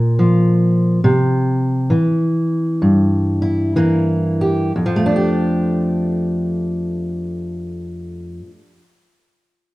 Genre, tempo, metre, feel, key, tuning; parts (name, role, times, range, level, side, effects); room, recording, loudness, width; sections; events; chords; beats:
acoustic country blues, solo or duo; 58-73 BPM; 4/4; swing 64% on 8ths; F major; A4 = 439 Hz
fingerpicked steel-string acoustic guitar; solo; 0.0-8.8 s; F2 to G4; -15 LUFS; equal
moderate stone room reverb, RT60 1.2 s; band playing live in one room; -15 LUFS; side -19 dB against mid
0.0-4.7 A section; 4.7-8.9 B section
slowing down 0.0-4.7
0.0 Bb5; 1.0 C7; 4.7 F69
0.19 | 1.03 1.90 2.80 3.75 | 4.75 5.78 6.81 7.84